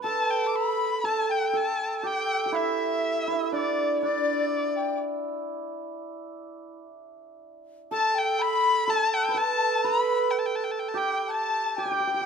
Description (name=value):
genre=chinese traditional, Chinese chamber ensemble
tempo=62 BPM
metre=4/4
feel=rubato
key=G gong mode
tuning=A4 = 439 Hz
part: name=rich erhu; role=melody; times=0.0-12.3 s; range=D5 to D6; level=-28 LUFS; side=left 3 dB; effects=none
part: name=bright large dizi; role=second line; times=0.0-12.3 s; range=D4 to B5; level=-29 LUFS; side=left 4 dB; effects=none
part: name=hammered dulcimer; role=second line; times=0.0-12.3 s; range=D4 to B4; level=-28 LUFS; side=right 4 dB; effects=none
room=light reverb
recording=close, detailed microphones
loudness=-24 LUFS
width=side -6 dB against mid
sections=0.0-12.3 A section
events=none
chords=none